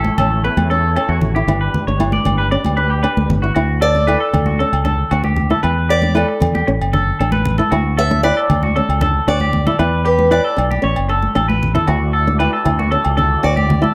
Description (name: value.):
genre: highlife guitar band.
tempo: 115 BPM.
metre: 4/4.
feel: straight.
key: D major.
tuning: A4 = 440 Hz.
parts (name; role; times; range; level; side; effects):
nylon-string guitar; accompaniment; 0.0-13.9 s; B3 to E4; -26 LUFS; equal; none.
tonewheel organ; sustained chords; 0.0-3.5, 11.9-13.9 s; D4 to D5; -31 LUFS; equal; slow rotary speaker, chorus vibrato.
clean electric guitar; arpeggios; 0.0-13.9 s; F#4 to D5; -22 LUFS; equal; subtle chorus, slapback echo.
fingered electric bass; bass; 0.0-13.8 s; F#1 to E2; -20 LUFS; equal; none.
congas; percussion; 0.0-13.9 s; none; -24 LUFS; equal; none.
agogo bells; percussion; 0.2-13.6 s; none; -28 LUFS; equal; none.
picked old ladder-braced acoustic guitar; melody; 3.8-13.9 s; A4 to E5; -21 LUFS; equal; none.
room: light reverb.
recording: none.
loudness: -16 LUFS.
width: mono.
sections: 0.0-3.6 A section; 3.6-13.9 B section.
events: steel-string acoustic guitar solo 3.6-13.9; drum fill 11.2-11.9.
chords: 0.0 A; 1.5 G; 3.6 Dadd9; 5.6 Em7; 6.7 A; 7.7 Dadd9; 9.8 Em7; 10.8 A; 11.9 Dadd9.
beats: 0.44 0.96 | 1.48 2.00 2.52 3.04 | 3.56 4.08 4.60 5.12 | 5.64 6.16 6.68 7.20 | 7.72 8.24 8.76 9.28 | 9.80 10.32 10.84 11.36 | 11.88 12.40 12.92 13.44.